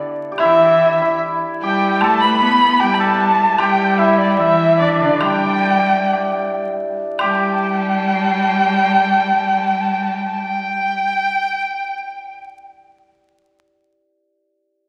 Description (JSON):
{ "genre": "chinese traditional, Chinese chamber ensemble", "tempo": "52-77 BPM", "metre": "2/4", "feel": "rubato", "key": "G gong mode", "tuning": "A4 = 439 Hz", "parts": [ { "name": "hammered dulcimer", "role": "second line", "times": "0.0-11.0 s", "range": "B3 to B4", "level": "-22 LUFS", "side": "equal", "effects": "none" }, { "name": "dark erhu", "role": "melody", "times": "0.4-11.0 s", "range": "D5 to B5", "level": "-19 LUFS", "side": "equal", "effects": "none" }, { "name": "bright large dizi", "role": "second line", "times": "0.4-12.5 s", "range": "D5 to B5", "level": "-25 LUFS", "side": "equal", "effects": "none" }, { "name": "clear cello", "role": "second line", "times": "0.4-11.0 s", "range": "D3 to B3", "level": "-24 LUFS", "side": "equal", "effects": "none" }, { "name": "woodblock", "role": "percussion", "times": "0.4-7.7 s", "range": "none", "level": "-30 LUFS", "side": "equal", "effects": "none" } ], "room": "wet recital hall reverb, RT60 1.6 s", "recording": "vinyl crackle", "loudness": "-16 LUFS", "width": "mono", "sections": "0.0-7.2 A section; 7.2-11.7 B section", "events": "slowing down 3.6-7.2", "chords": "none", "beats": "| 0.38 1.20 | 2.01 2.80 | 3.59 4.38 | 5.21 6.14 | 7.21 8.34 | 9.46 10.58" }